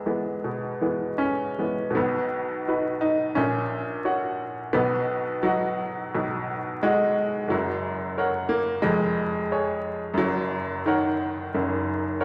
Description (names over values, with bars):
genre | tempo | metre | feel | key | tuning
classical, romantic character piece for solo piano | 87 BPM | 4/4 | uneven beats, rubato | B major | A4 = 441 Hz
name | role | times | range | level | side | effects
bright upright piano | solo | 0.0-12.2 s | E#1 to F#5 | -26 LUFS | equal | none
room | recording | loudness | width
wet recital hall reverb, RT60 1.4 s | vinyl crackle | -26 LUFS | mono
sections
0.0-2.0 A section; 2.0-12.2 B section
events
none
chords
0.0 E; 2.0 B; 3.4 F#/A#; 4.7 B; 7.5 F#; 8.8 C#/E#; 10.2 F#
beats
0.44 1.19 | 1.96 2.67 3.36 4.05 | 4.75 5.45 6.15 6.85 | 7.52 8.18 8.84 9.52 | 10.19 10.87 11.54 12.20